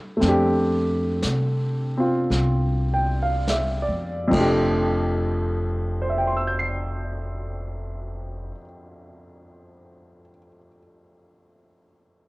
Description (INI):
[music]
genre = jazz ballad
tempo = 47-60 BPM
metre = 4/4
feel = swing 68% on 8ths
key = F major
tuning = A4 = 441 Hz
[part]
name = clear concert grand piano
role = accompaniment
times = 0.0-12.3 s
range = F2 to C7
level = -23 LUFS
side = equal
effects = cassette tape
[part]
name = upright bass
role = bass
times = 0.2-8.5 s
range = F1 to C3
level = -25 LUFS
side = equal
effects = none
[part]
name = vintage brush drum kit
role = drums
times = 0.2-4.5 s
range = brushed snare drum, hi-hat, kick drum, ride cymbal, snare drum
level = -32 LUFS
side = equal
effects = cassette tape
[sound]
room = moderate small room reverb, RT60 0.5 s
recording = home recording on cassette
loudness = -21 LUFS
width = side -22 dB against mid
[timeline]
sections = 0.0-4.7 A section; 4.7-9.8 B section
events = slowing down 0.0-4.7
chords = 0.0 F69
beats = | 0.21 1.23 2.32 3.48 | 4.73 6.01 7.28 8.54